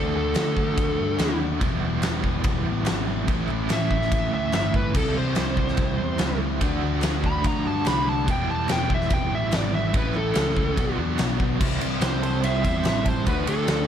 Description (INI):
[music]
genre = classic rock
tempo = 144 BPM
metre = 4/4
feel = straight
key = unclear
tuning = A4 = 440 Hz
[part]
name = smooth overdriven lead guitar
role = melody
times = 0.0-13.9 s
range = A4 to B5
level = -28 LUFS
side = equal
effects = slapback echo
[part]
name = crunchy overdriven guitar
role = riff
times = 0.0-13.9 s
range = E2 to F#4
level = -32 LUFS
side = left 13 dB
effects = none
[part]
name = overdriven electric guitar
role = riff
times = 0.0-13.9 s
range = A2 to F#4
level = -31 LUFS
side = right 10 dB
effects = tremolo
[part]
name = sludgy distorted guitar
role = riff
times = 0.0-13.9 s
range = E2 to D4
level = -31 LUFS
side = left 1 dB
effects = overdrive
[part]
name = picked electric bass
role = bass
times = 0.0-13.9 s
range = E1 to G2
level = -28 LUFS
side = equal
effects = none
[part]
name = huge arena drum kit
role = drums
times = 0.4-13.8 s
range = crash cymbal, kick drum, ride cymbal, snare drum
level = -26 LUFS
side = equal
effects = none
[part]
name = group handclap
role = percussion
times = 0.4-13.8 s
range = none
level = -41 LUFS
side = left 7 dB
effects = none
[part]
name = octave-fuzz lead guitar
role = second line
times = 12.0-13.9 s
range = D4 to C5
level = -35 LUFS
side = right 2 dB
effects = distortion
[sound]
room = small room ambience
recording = none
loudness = -21 LUFS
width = side -9 dB against mid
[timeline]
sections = 0.0-11.6 A section; 11.6-13.9 B section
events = lead electric guitar solo 0.0-11.6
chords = 0.0 D; 1.6 Em; 3.3 A; 4.9 C; 6.6 D; 8.3 Em; 9.9 A; 10.8 Bm; 11.6 C; 13.3 D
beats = 0.36 0.78 1.19 | 1.61 2.03 2.45 2.86 | 3.28 3.70 4.12 4.53 | 4.95 5.37 5.78 6.20 | 6.62 7.03 7.45 7.86 | 8.28 8.69 9.11 9.53 | 9.94 10.36 10.77 11.19 | 11.60 12.02 12.44 12.85 | 13.27 13.68